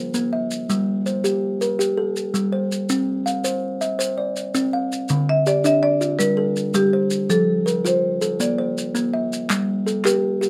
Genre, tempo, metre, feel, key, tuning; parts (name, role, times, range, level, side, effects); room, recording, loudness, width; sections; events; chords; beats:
southern african traditional, mbira-style interlocking cycle; 109 BPM (dotted quarters); 12/8; straight; G equiheptatonic; A4 = 441 Hz
marimba with medium mallets; melody; 0.0-0.1, 5.3-9.3 s; G4 to E5-43c; -22 LUFS; equal
kalimba; arpeggios; 0.0-10.5 s; D3 to F5+29c; -23 LUFS; equal
maracas; percussion; 0.1-10.5 s; -32 LUFS; equal
group handclap; percussion; 9.5-10.2 s; -27 LUFS; equal
light reverb; close, detailed microphones; -21 LUFS; mono
0.0-9.5 A section
0.0 Am (rootless); 0.7 Gm; 2.9 C; 5.1 Dm; 6.2 Gm; 7.3 F; 8.4 Bb; 9.5 Gm
0.14 | 0.69 1.24 1.79 2.34 | 2.89 3.44 3.99 4.54 | 5.09 5.64 6.20 6.75 | 7.30 7.85 8.40 8.95 | 9.50 10.05